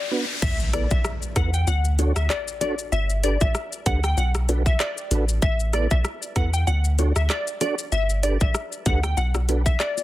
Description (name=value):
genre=dancehall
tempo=96 BPM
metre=4/4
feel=swing 56% on 16ths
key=D major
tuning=A4 = 438 Hz
part: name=glassy wavetable pluck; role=melody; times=0.0-10.0 s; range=D5 to G5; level=-28 LUFS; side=left 2 dB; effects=chorus, tape echo
part: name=riser and impact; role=sound effects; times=0.0-2.9 s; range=none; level=-31 LUFS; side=equal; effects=none
part: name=mellow tonewheel organ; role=accompaniment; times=0.1-9.6 s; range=B3 to C#5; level=-30 LUFS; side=right 4 dB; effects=chorus vibrato, fast rotary speaker
part: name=punchy sub bass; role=bass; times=0.4-9.8 s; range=G1 to E2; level=-22 LUFS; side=equal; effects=none
part: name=island pop drum kit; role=drums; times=0.4-10.0 s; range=crash cymbal, handclaps, hi-hat, kick drum, rim click, shaker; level=-25 LUFS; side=equal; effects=overdrive
part: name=bongos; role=percussion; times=0.4-10.0 s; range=none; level=-34 LUFS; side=left 8 dB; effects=none
room=little or no reverb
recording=dense, heavily limited modern master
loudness=-20 LUFS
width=side -15 dB against mid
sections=0.4-10.0 A section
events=break 0.0-0.4; riser 0.0-0.4; impact 0.4-2.9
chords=0.4 Asus2; 1.7 Dmaj7; 2.9 Gadd9; 4.2 Bm7; 5.4 Asus2; 6.7 Dmaj7; 7.9 Gadd9; 9.2 Bm7